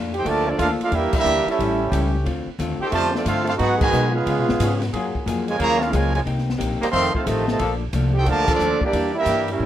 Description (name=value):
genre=jazz, big band swing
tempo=180 BPM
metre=4/4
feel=swing 65% on 8ths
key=unclear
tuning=A4 = 440 Hz
part: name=vintage hollow-body jazz guitar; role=accompaniment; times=0.0-9.7 s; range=F2 to Ab4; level=-28 LUFS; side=left 5 dB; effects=none
part: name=upright bass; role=bass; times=0.0-9.7 s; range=F1 to Db3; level=-24 LUFS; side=equal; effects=none
part: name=bright trombone section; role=second line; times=0.1-9.7 s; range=Cb3 to A4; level=-23 LUFS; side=right 3 dB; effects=none
part: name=open jazz drum kit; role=drums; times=0.1-9.5 s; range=crash cymbal, hi-hat, kick drum, ride cymbal, snare drum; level=-29 LUFS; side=left 1 dB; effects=none
part: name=clear trumpet section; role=melody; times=0.2-9.7 s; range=Bb3 to C6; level=-23 LUFS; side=right 2 dB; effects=none
part: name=warm trombone section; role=sustained chords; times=0.6-8.9 s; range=E3 to A4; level=-30 LUFS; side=left 2 dB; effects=none
room=moderate studio reverb, RT60 0.5 s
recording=rough home demo mix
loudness=-18 LUFS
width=side -11 dB against mid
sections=0.0-9.7 A section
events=band accent 1.1, 3.8, 8.4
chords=0.0 Bbmaj7; 0.9 Em7b5; 1.6 A7; 2.3 Dm7; 3.6 Abm7; 4.3 Db7; 4.9 Gbmaj9; 6.3 Cm7; 6.9 F7; 7.6 Bbmaj7; 8.9 Em7b5